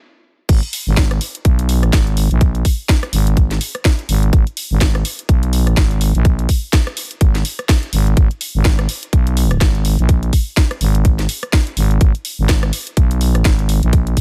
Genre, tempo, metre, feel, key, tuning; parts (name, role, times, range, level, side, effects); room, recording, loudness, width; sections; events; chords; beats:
bass house; 125 BPM; 4/4; swing 58% on 16ths; G# minor; A4 = 440 Hz
growling FM bass; bass; 0.5-14.2 s; G#1 to B1; -18 LUFS; equal; sidechain pumping
electronic kick drum; drums; 0.5-14.2 s; -15 LUFS; equal; high-pass filter on kick
garage drum kit; drums; 0.5-14.2 s; crash cymbal, hi-hat, rim click, snare drum; -24 LUFS; equal
digital ambience; -16 LUFS; mono
0.5-14.2 A section
stop 0.0-0.5; drop 0.5-14.2
0.01 | 0.49 0.97 1.45 1.93 | 2.41 2.89 3.37 3.85 | 4.33 4.81 5.29 5.77 | 6.25 6.73 7.21 7.69 | 8.17 8.65 9.13 9.61 | 10.09 10.57 11.05 11.53 | 12.01 12.49 12.97 13.45 | 13.93